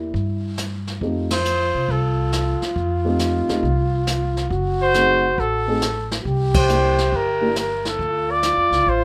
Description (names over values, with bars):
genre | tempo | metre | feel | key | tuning
jazz, small-group swing and bop | 137 BPM | 4/4 | swing 67% on 8ths | unclear | A4 = 440 Hz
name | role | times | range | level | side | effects
mellow trombone | second line | 0.0-9.0 s | E4 to G4 | -27 LUFS | equal | none
dark upright piano | accompaniment | 0.0-7.5 s | A3 to Ab4 | -27 LUFS | equal | none
upright bass | bass | 0.0-9.0 s | F#1 to C3 | -26 LUFS | equal | none
jazz brush drum kit | drums | 0.1-9.0 s | brushed snare drum, hi-hat, kick drum, ride cymbal, snare drum | -29 LUFS | equal | none
warm trumpet | melody | 1.3-9.0 s | A4 to D5 | -22 LUFS | equal | none
room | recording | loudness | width
moderate club reverb, RT60 0.5 s | none | -20 LUFS | mono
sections
0.0-9.0 A section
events
band accent 1.2, 6.5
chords
0.0 C (rootless); 1.0 F7; 4.5 F#dim7; 6.2 C7; 8.0 Dm